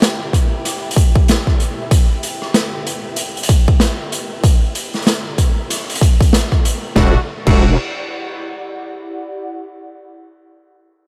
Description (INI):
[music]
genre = glitch hop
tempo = 95 BPM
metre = 4/4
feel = swing 60% on 16ths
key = E minor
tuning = A4 = 440 Hz
[part]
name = raw garage drum kit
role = drums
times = 0.0-7.6 s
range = crash cymbal, hi-hat, rim click, snare drum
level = -22 LUFS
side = equal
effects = none
[part]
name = airy breathy pad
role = texture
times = 0.0-9.5 s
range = E4 to G5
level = -33 LUFS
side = equal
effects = chorus, sidechain pumping
[part]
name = electronic kick drum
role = drums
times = 0.3-7.6 s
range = none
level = -15 LUFS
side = equal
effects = none
[part]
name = brilliant horn section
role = stabs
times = 7.0-7.7 s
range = G3 to F#4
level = -25 LUFS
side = equal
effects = sidechain pumping, analog delay
[part]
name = wobble bass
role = bass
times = 7.0-7.8 s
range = E1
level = -16 LUFS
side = equal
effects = chorus, overdrive
[sound]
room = studio reverb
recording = none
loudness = -16 LUFS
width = mono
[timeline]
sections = 0.0-7.0 A section; 7.0-9.5 B section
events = fade-out on analog synth pad 0.0-7.0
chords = 0.0 Em; 7.0 Em9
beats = 0.02 0.65 1.28 | 1.91 2.54 3.18 3.81 | 4.44 5.07 5.70 6.33 | 6.96 7.60 8.23 8.86